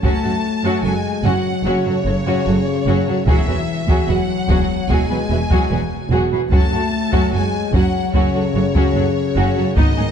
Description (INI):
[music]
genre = cinematic, epic orchestral film score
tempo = 74 BPM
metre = 4/4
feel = straight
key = F# dorian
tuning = A4 = 441 Hz
[part]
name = bright symphonic violin section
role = melody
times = 0.0-10.1 s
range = C#5 to A5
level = -26 LUFS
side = left 4 dB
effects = none
[part]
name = warm symphonic violin section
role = second line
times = 0.0-10.1 s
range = C#4 to E5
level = -25 LUFS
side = left 3 dB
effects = none
[part]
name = clear symphonic viola section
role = accompaniment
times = 0.0-10.0 s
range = F#3 to F#4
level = -24 LUFS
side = right 3 dB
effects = none
[part]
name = mellow French horn section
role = sustained chords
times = 0.0-10.1 s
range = C#3 to A3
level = -22 LUFS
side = left 5 dB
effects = none
[part]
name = dark symphonic cello section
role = bass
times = 0.0-10.1 s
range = E2 to G#2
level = -23 LUFS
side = right 3 dB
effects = none
[part]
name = rich symphonic double bass section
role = bass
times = 0.0-9.8 s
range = E1 to G#1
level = -22 LUFS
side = right 3 dB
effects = none
[part]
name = solo taiko drums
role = drums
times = 0.0-10.1 s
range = none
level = -19 LUFS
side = equal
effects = none
[sound]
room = moderate scoring stage reverb, RT60 2.1 s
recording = dark, warm production, nothing above 10.7 kHz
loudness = -15 LUFS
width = side -8 dB against mid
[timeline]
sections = 0.0-10.1 A section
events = none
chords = 0.0 F#m; 3.3 Eadd9; 6.5 F#m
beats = | 0.03 0.84 1.65 2.46 | 3.27 4.08 4.89 5.71 | 6.52 7.33 8.14 8.95 | 9.76